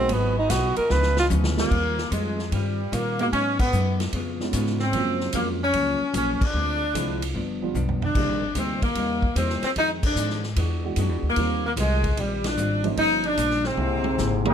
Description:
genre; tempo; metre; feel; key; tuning
jazz, big band swing; 149 BPM; 4/4; swing 67% on 8ths; unclear; A4 = 445 Hz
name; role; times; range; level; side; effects
breathy tenor saxophone; melody; 0.0-1.3 s; Cb4 to Cb5; -23 LUFS; right 2 dB; none
dark baby grand piano; accompaniment; 0.0-8.4, 10.8-14.5 s; F2 to G4; -29 LUFS; right 5 dB; none
upright bass; bass; 0.0-14.5 s; G1 to Bb2; -26 LUFS; equal; none
vintage hollow-body jazz guitar; accompaniment; 0.1-14.5 s; F2 to F#4; -32 LUFS; left 3 dB; none
clear saxophone section; sustained chords; 0.1-1.7 s; Cb4 to Eb5; -35 LUFS; left 2 dB; none
swinging big-band drum kit; drums; 0.1-14.5 s; crash cymbal, hi-hat, kick drum, ride cymbal, snare drum, toms; -30 LUFS; equal; none
warm saxophone section; melody; 1.6-14.5 s; G3 to Eb4; -24 LUFS; left 1 dB; none
brilliant trombone section; second line; 13.6-14.5 s; Ab2 to Bb3; -28 LUFS; left 1 dB; none
warm trumpet section; melody; 14.5 s; G#3 to Bb4; -22 LUFS; equal; none
room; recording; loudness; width
light reverb; close, detailed microphones; -21 LUFS; side -8 dB against mid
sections
0.0-1.7 A section; 1.7-14.5 B section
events
tenor saxophone solo 0.0-1.7; drum fill 0.9-1.7, 7.7-8.1, 13.8-14.5; band accent 3.5, 6.3, 10.0, 12.4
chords
0.1 Abm7; 0.9 Db9; 1.7 Eb69; 3.3 Abm7; 4.1 Db7; 4.9 Gbmaj7; 6.5 Dm7b5; 7.3 G7; 8.1 Cm7; 9.8 Fm7; 10.6 E9; 11.4 Eb69; 13.0 Gm7b5; 13.8 C7b13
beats
| 0.10 0.50 0.90 1.30 | 1.71 2.11 2.51 2.92 | 3.32 3.72 4.12 4.53 | 4.93 5.33 5.73 6.14 | 6.54 6.94 7.34 7.75 | 8.15 8.55 8.95 9.35 | 9.76 10.16 10.56 10.96 | 11.37 11.77 12.17 12.57 | 12.97 13.38 13.78 14.18

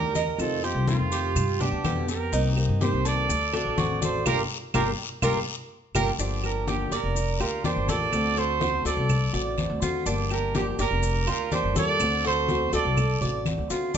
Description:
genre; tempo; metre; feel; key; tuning
latin, Cuban son and guajira; 124 BPM; 4/4; straight; G minor; A4 = 438 Hz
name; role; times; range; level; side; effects
warm trumpet; melody; 0.0-13.4 s; F4 to D5; -28 LUFS; right 5 dB; none
flamenco guitar; second line; 0.0-13.4 s; C4 to Bb4; -35 LUFS; left 5 dB; none
fingerpicked acoustic archtop guitar; accompaniment; 0.0-14.0 s; B2 to G4; -32 LUFS; left 4 dB; none
Cuban tres; arpeggios; 0.0-14.0 s; D4 to Eb5; -32 LUFS; right 6 dB; none
upright bass; bass; 0.0-14.0 s; F1 to D3; -28 LUFS; left 1 dB; none
congas; percussion; 0.2-14.0 s; none; -31 LUFS; left 1 dB; none
guiro; percussion; 0.2-14.0 s; none; -38 LUFS; left 7 dB; none
maracas; percussion; 0.2-14.0 s; none; -38 LUFS; left 9 dB; none
claves; percussion; 0.4-13.7 s; none; -36 LUFS; right 8 dB; none
room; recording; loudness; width
moderate large studio reverb, RT60 1.1 s; nothing above 7.9 kHz; -23 LUFS; side -8 dB against mid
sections
0.0-6.2 A section; 6.2-14.0 B section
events
band accent 4.3-6.2; drum fill 5.5-6.2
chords
0.4 F7; 1.4 G; 2.3 Cm7; 3.3 D7; 4.3 Gm7; 8.1 D7; 10.1 Gm7; 12.0 D7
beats
| 0.39 0.88 1.36 1.84 | 2.33 2.81 3.29 3.78 | 4.26 4.74 5.23 5.71 | 6.19 6.68 7.16 7.64 | 8.13 8.61 9.10 9.58 | 10.06 10.55 11.03 11.52 | 12.00 12.49 12.97 13.46 | 13.95

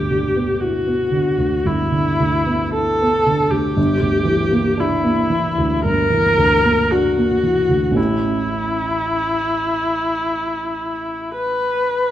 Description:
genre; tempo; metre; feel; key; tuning
classical, romantic duo for viola and grand piano; 50-60 BPM; 4/4; rubato; unclear; A4 = 440 Hz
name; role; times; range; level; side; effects
warm viola; melody; 0.0-12.1 s; E4 to B4; -18 LUFS; left 1 dB; none
dark baby grand piano; accompaniment; 0.0-12.1 s; G1 to E4; -20 LUFS; right 1 dB; none
room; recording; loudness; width
moderate recital hall reverb, RT60 1.5 s; none; -16 LUFS; side -12 dB against mid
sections
0.0-12.1 A section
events
none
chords
0.0 G6; 3.8 Em7b5/G; 8.0 A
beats
0.60 1.65 2.75 | 3.77 4.78 5.85 6.90 | 7.97 9.06 10.16 11.33

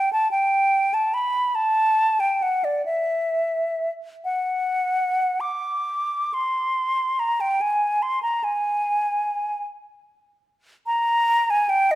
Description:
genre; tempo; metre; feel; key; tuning
classical, free, expressive piece for unaccompanied flute; 34-51 BPM (dotted quarters); 6/8; rubato; unclear; A4 = 440 Hz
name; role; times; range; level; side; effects
concert flute; solo; 0.0-12.0 s; D5 to D6; -20 LUFS; equal; none
room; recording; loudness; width
moderate recital hall reverb, RT60 1.4 s; none; -20 LUFS; side -14 dB against mid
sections
0.0-12.0 A section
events
none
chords
none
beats
| 0.33 1.57 | 2.87 4.26 | 5.90 7.19 | 8.43 9.65 | 10.88

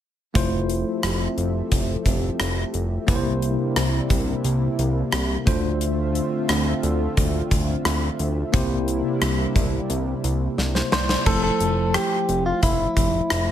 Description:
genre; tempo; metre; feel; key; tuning
1980s-style pop; 88 BPM; 4/4; straight; F major; A4 = 441 Hz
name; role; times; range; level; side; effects
bell-like tine electric piano; accompaniment; 0.3-13.5 s; C3 to D5; -26 LUFS; left 1 dB; medium stereo tremolo
chorused pulse-width pad; sustained chords; 0.4-11.2 s; C3 to E5; -30 LUFS; right 1 dB; none
fat analog bass; bass; 0.4-13.5 s; F1 to D2; -25 LUFS; equal; none
gated 80s drum kit; drums; 0.4-13.5 s; crash cymbal, hi-hat, kick drum, rim click, snare drum; -23 LUFS; equal; none
direct-recorded clean electric guitar; melody; 10.9-13.5 s; E4 to C5; -22 LUFS; equal; none
room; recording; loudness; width
light reverb, small room ambience; none; -20 LUFS; side -10 dB against mid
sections
0.4-11.3 A section; 11.3-13.5 B section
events
drum fill 10.6-11.3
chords
0.4 Fmaj7; 3.1 C7; 5.5 Dm7; 8.5 C7; 11.3 Fmaj7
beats
| 0.35 1.03 1.72 2.40 | 3.08 3.76 4.44 5.13 | 5.81 6.49 7.17 7.85 | 8.54 9.22 9.90 10.58 | 11.26 11.94 12.63 13.31

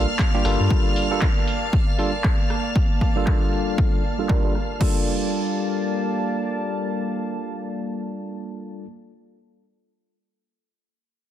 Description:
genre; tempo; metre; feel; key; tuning
deep house; 117 BPM; 4/4; swing 58% on 16ths; G minor; A4 = 440 Hz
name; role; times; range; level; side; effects
warm analog pad; sustained chords; 0.0-8.8 s; G3 to A5; -28 LUFS; right 1 dB; chorus, sidechain pumping
barky tine electric piano; stabs; 0.0-8.9 s; G3 to Bb4; -26 LUFS; moving between left 6 dB and right 5 dB; overdrive, auto-pan, low-pass filter, dub echo
round analog bass; bass; 0.0-0.7 s; G1 to G2; -20 LUFS; equal; tube saturation, sidechain pumping
string machine, violins; texture; 0.0-4.8 s; F5 to F6; -31 LUFS; equal; ensemble chorus, sidechain pumping
house drum kit; drums; 0.2-4.9 s; crash cymbal, kick drum; -21 LUFS; equal; overdrive
punchy analog drum machine; drums; 0.2-4.7 s; handclaps, hi-hat, rim click; -32 LUFS; equal; low-pass filter on snare, low-pass filter on hats, low-pass filter on cymbals, low-pass filter on room
room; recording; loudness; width
light reverb; dense, heavily limited modern master; -20 LUFS; side -11 dB against mid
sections
0.0-4.8 A section; 4.8-8.9 B section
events
filter sweep on drum 0.0-4.8; filter sweep on tine electric piano 0.0-4.8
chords
0.0 Gm9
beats
0.19 | 0.70 1.22 1.73 2.24 | 2.76 3.27 3.78 4.29 | 4.81 5.32 5.83 6.35 | 6.86 7.37 7.88 8.40

